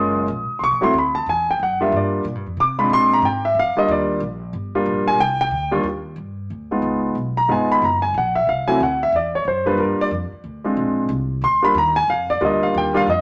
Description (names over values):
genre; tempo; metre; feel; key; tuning
jazz; 183 BPM; 3/4; swing 63% on 8ths; Eb major; A4 = 443 Hz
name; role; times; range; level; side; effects
warm concert grand piano; accompaniment; 0.0-13.2 s; Eb2 to D6; -20 LUFS; equal; none
upright bass; bass; 0.0-13.2 s; Gb1 to C3; -31 LUFS; equal; none
room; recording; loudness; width
moderate studio reverb, RT60 0.9 s; none; -19 LUFS; mono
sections
0.0-5.9 A section; 5.9-13.2 A section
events
none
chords
0.0 Gbmaj7; 0.9 D; 1.9 Bb9; 3.9 Ebmaj9; 5.9 Ebmaj7; 6.8 Db9; 7.8 Gb; 8.8 D; 9.8 Gm7; 10.8 Bb9; 11.8 Ebmaj9